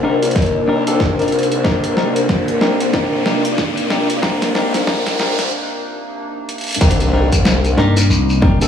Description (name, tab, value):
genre	glitch hop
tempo	93 BPM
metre	4/4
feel	swing 59% on 16ths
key	C minor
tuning	A4 = 441 Hz
part	warbly tape-like pad	sustained chords	0.0-8.7 s	C3 to Eb4	-21 LUFS	equal	chorus, built-in reverb, phaser, sidechain pumping
part	clean electric guitar	stabs	0.0-8.7 s	D4 to Bb4	-21 LUFS	left 1 dB	sidechain pumping, low-pass filter, analog delay
part	formant-sweep wobble bass	bass	0.0-8.7 s	C2 to G2	-21 LUFS	left 2 dB	chorus, high-pass filter
part	riser and impact	sound effects	0.0-8.7 s	none	-25 LUFS	equal	none
part	airy breathy pad	texture	0.0-5.5 s	F4 to D5	-23 LUFS	left 3 dB	chorus, sidechain pumping
part	boom bap sampler-style drum kit	drums	0.2-8.7 s	crash cymbal, hi-hat, snare drum	-21 LUFS	equal	none
part	electronic kick drum	drums	0.4-8.6 s	none	-18 LUFS	equal	none
part	shekere	percussion	6.8-8.7 s	none	-24 LUFS	left 3 dB	none
part	slap bass	bass	7.8-8.6 s	C2 to G2	-14 LUFS	equal	none
room	light reverb, digital ambience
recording	dry, gritty hardware recording, high-pass filter, studio reverb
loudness	-14 LUFS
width	side -8 dB against mid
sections	0.0-6.8 A section; 6.8-8.7 B section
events	build-up 0.0-6.8; drum fill 0.0-5.5, 6.5-6.8; riser 0.0-5.5; filter sweep on ambient pad 0.0-6.8; filter sweep 0.0-6.8; break 5.5-6.8; drop 6.8-8.7; impact 6.8-8.7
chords	0.0 Cm9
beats	0.36 1.00 | 1.65 2.29 2.94 3.58 | 4.23 4.87 5.52 6.16 | 6.81 7.45 8.10